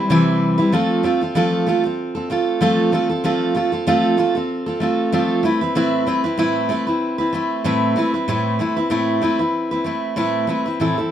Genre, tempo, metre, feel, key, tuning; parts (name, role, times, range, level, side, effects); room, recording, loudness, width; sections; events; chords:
pop; 95 BPM; 4/4; swing 55% on 16ths; A4 = 440 Hz
picked steel-string acoustic guitar; solo; 0.0-11.1 s; A2 to B4; -17 LUFS; equal
light reverb; close, detailed microphones; -17 LUFS; side -10 dB against mid
0.7-10.8 A section
0.0 Cmaj7; 0.7 F; 5.4 Amadd9